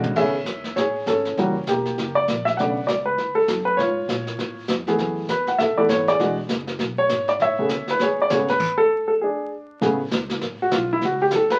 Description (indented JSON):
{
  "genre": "jazz piano trio",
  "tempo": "199 BPM",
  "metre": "4/4",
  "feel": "swing 60% on 8ths",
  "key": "A major",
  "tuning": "A4 = 440 Hz",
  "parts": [
    { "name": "warm baby grand piano", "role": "melody", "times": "0.0-11.6 s", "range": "C#3 to F#5", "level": "-22 LUFS", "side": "equal", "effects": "none" },
    { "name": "upright bass", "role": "bass", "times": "0.0-11.6 s", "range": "E1 to B2", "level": "-37 LUFS", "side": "equal", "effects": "none" },
    { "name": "jazz brush drum kit", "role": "drums", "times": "0.0-11.6 s", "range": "brushed snare drum, crash cymbal, hi-hat, kick drum, ride cymbal, snare drum, toms", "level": "-30 LUFS", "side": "equal", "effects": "none" }
  ],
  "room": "moderate club reverb, RT60 0.5 s",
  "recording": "very old 78 rpm record, vinyl crackle",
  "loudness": "-22 LUFS",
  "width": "mono",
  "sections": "0.2-9.8 A section; 9.8-11.6 B section",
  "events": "drum fill 0.0; grand piano solo 9.8-11.6",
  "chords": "0.2 Amaj7; 1.4 F#7b9; 2.6 Bm9; 3.8 C#(b13); 5.0 F#m11; 6.2 E9; 7.4 Amaj9; 9.2 N.C.; 9.8 Aadd9; 11.0 F#5",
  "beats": "| 0.17 0.47 0.77 1.07 | 1.37 1.67 1.97 2.27 | 2.58 2.88 3.18 3.48 | 3.78 4.08 4.39 4.69 | 4.99 5.29 5.59 5.89 | 6.19 6.50 6.80 7.10 | 7.40 7.70 8.00 8.30 | 8.60 8.91 9.21 9.51 | 9.81 10.11 10.41 10.71 | 11.02 11.32"
}